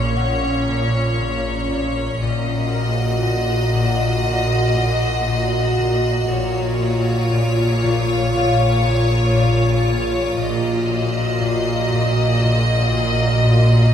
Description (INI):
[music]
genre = cinematic, suspense film score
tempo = 59 BPM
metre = 4/4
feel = straight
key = unclear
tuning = A4 = 440 Hz
[part]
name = clear studio violin section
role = melody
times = 0.0-13.9 s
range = Db5 to Eb5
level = -24 LUFS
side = left 2 dB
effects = none
[part]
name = icy glass pad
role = sustained chords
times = 0.0-13.9 s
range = Db4 to Gb5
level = -23 LUFS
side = right 1 dB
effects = chorus, built-in reverb
[part]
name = concert harp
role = riff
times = 0.0-13.9 s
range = Bb2 to Bb3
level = -22 LUFS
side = left 2 dB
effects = none
[part]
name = rich symphonic cello section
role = bass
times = 0.0-13.9 s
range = Bb2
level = -23 LUFS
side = right 1 dB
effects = none
[part]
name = rich symphonic double bass section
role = bass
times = 0.0-13.9 s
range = Bb1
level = -24 LUFS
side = right 2 dB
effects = none
[part]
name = Celtic harp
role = texture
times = 0.2-12.3 s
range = Bb4 to Bb5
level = -28 LUFS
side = left 10 dB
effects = none
[sound]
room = wet recital hall reverb, RT60 1.3 s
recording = recorded in a church or concert hall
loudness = -16 LUFS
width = side -9 dB against mid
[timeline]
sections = 0.0-13.9 A section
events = none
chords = 0.0 Bbm; 2.2 Ebm/Bb; 6.3 Bbm; 10.4 Ebmadd9/Bb